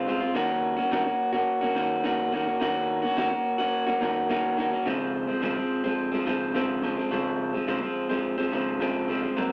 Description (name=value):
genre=indie pop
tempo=106 BPM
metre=4/4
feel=straight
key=Db major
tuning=A4 = 442 Hz
part: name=electric guitar through a small old amp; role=solo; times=0.0-9.5 s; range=Ab2 to Gb4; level=-27 LUFS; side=equal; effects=warbly pitch drift
room=wet studio reverb, RT60 0.5 s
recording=none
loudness=-27 LUFS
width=mono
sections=0.0-9.5 A section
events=none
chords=0.4 Ebm7; 4.9 Dbmaj7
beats=| 0.36 0.92 1.48 2.05 | 2.61 3.17 3.74 4.30 | 4.86 5.43 5.99 6.55 | 7.12 7.68 8.24 8.81 | 9.37